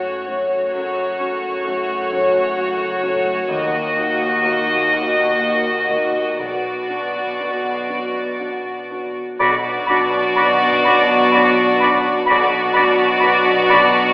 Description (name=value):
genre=cinematic, emotional film score for orchestra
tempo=39-44 BPM (dotted quarters)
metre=6/8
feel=rubato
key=B minor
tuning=A4 = 437 Hz
part: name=rich studio violin section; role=melody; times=0.0-14.1 s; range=C#5 to D#5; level=-21 LUFS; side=equal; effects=none
part: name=warm studio violin section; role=second line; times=0.0-14.1 s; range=F#4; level=-20 LUFS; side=equal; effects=none
part: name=dark studio viola section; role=accompaniment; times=0.0-14.1 s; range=A3 to B3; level=-27 LUFS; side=equal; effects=none
part: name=warm concert grand piano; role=accompaniment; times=0.0-14.1 s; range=B1 to F#4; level=-26 LUFS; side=equal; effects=none
part: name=concert harp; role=arpeggios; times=0.0-14.1 s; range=F#2 to F#5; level=-27 LUFS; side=left 1 dB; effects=none
part: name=dark studio cello section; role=bass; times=0.0-14.1 s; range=D#2 to B2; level=-30 LUFS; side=equal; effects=none
part: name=dark studio double bass section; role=bass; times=0.0-14.1 s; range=F#1 to D#2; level=-37 LUFS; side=equal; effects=none
part: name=bright clarinet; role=second line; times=9.4-13.8 s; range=F#4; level=-22 LUFS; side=equal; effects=none
part: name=clear oboe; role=second line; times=9.4-13.9 s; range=D5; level=-20 LUFS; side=equal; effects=none
part: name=silver concert flute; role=second line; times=9.4-13.8 s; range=B5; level=-20 LUFS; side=equal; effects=none
part: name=mellow French horn section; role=sustained chords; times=9.4-14.1 s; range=F#3 to D4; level=-23 LUFS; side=equal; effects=none
room=wet recital hall reverb, RT60 1.4 s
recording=telephone sound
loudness=-14 LUFS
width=side -21 dB against mid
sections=0.0-9.4 A section; 9.4-14.1 B section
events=none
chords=0.0 F#m; 3.5 D#m; 6.4 Bm